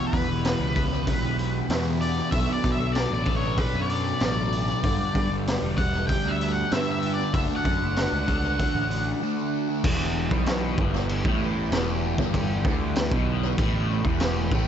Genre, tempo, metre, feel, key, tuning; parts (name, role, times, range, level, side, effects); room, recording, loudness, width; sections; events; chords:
psychedelic rock; 96 BPM; 4/4; straight; E minor; A4 = 440 Hz
octave-fuzz lead guitar; melody; 0.0-9.1 s; B4 to G5; -30 LUFS; left 2 dB; distortion, tape echo
combo organ; sustained chords; 0.0-14.7 s; A3 to A4; -36 LUFS; right 5 dB
fuzz guitar; riff; 0.0-14.7 s; E2 to D4; -28 LUFS; equal; distortion, phaser, tape echo
fuzz picked electric bass; bass; 0.1-14.7 s; E1 to B2; -28 LUFS; equal; overdrive
raw garage drum kit; drums; 0.1-14.7 s; crash cymbal, hi-hat, kick drum, snare drum; -27 LUFS; equal; tape echo
small room ambience; echo-heavy mix, nothing above 7.9 kHz; -22 LUFS; side -9 dB against mid
0.0-9.9 A section; 9.9-14.7 B section
lead electric guitar solo 0.0-9.9
0.0 Em; 2.3 Bm7; 4.8 G; 7.4 D/F#; 9.9 Em